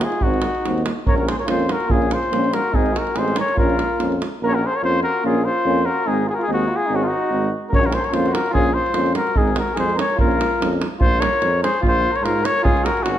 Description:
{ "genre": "balkan folk, Balkan brass band", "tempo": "145 BPM", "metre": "2/4", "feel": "straight", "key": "Bb minor", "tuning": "A4 = 440 Hz", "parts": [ { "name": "dark trumpet", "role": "melody", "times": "0.0-13.2 s", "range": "F4 to Db5", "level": "-21 LUFS", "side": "left 2 dB", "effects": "none" }, { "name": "mellow flugelhorn", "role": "second line", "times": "0.0-13.2 s", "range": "Db4 to Bb4", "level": "-26 LUFS", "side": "right 2 dB", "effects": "none" }, { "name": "warm tuba", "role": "bass", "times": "0.0-13.2 s", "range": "Ab1 to Ab2", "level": "-25 LUFS", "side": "equal", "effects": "none" }, { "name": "davul", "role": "percussion", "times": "0.0-4.3, 7.7-13.2 s", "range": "none", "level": "-22 LUFS", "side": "right 2 dB", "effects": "none" }, { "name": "warm euphonium", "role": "accompaniment", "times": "0.2-10.8 s", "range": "C4 to Eb4", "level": "-27 LUFS", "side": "left 5 dB", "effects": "none" }, { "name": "warm euphonium", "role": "accompaniment", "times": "0.2-10.8 s", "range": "Ab3 to C4", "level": "-28 LUFS", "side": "right 6 dB", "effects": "none" } ], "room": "moderate recital hall reverb, RT60 1.3 s", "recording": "none", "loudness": "-17 LUFS", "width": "side -11 dB against mid", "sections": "0.0-4.4 A section; 4.4-11.0 A section; 11.0-13.2 B section", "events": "speeding up 0.0-13.2", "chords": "0.0 Ab; 1.1 Bbm; 2.7 Ab; 3.6 Bbm; 6.1 Ab; 7.7 Bbm; 9.4 Ab; 10.2 Bbm; 12.6 Db5" }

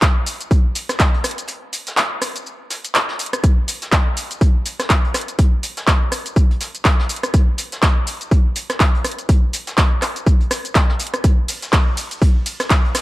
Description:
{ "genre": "house", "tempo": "123 BPM", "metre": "4/4", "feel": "swing 57% on 16ths", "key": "none", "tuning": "none", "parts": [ { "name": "electronic kick drum", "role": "drums", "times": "0.0-12.8 s", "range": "none", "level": "-14 LUFS", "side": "equal", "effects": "overdrive" }, { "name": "house drum kit", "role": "drums", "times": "0.0-13.0 s", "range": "handclaps, hi-hat, ride cymbal, rim click, shaker", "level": "-20 LUFS", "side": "equal", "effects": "overdrive" }, { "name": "soft brush drum kit", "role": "drums", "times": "0.0-13.0 s", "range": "hi-hat, snare drum", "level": "-30 LUFS", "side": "equal", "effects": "sidechain pumping on hats, high-pass filter on hats, high-pass filter on snare, high-pass filter on room" } ], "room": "little or no reverb", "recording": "dark, warm production", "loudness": "-15 LUFS", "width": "side -18 dB against mid", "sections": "0.0-13.0 A section", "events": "break 1.5-3.4", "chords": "none" }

